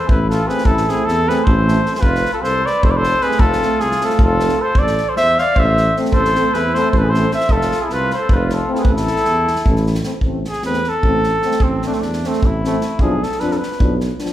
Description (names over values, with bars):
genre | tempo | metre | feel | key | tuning
balkan folk, Balkan brass band | 306 BPM (eighths) | 7/8 | straight | A harmonic minor | A4 = 440 Hz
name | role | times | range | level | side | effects
mellow cornet | melody | 0.0-14.0 s | C4 to F5 | -18 LUFS | equal | none
warm flugelhorn | second line | 0.0-9.9 s | E4 to D5 | -24 LUFS | left 2 dB | none
dark tuba | bass | 0.1-14.1 s | F1 to F2 | -20 LUFS | equal | none
unplugged drum kit | percussion | 0.1-14.3 s | kick drum, snare drum | -19 LUFS | equal | none
clear euphonium | accompaniment | 0.5-14.3 s | C4 to D4 | -26 LUFS | left 3 dB | none
clear trombone | accompaniment | 0.5-14.3 s | F3 to A3 | -26 LUFS | right 4 dB | none
room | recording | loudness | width
wet recital hall reverb, RT60 1.4 s | recorded in a church or concert hall | -14 LUFS | side -13 dB against mid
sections
0.0-10.2 A section; 10.2-14.3 B section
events
cornet solo 10.2-14.3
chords
0.0 Am; 2.0 F; 4.8 Am; 7.5 F; 8.9 A5; 10.2 Am; 13.0 Bdim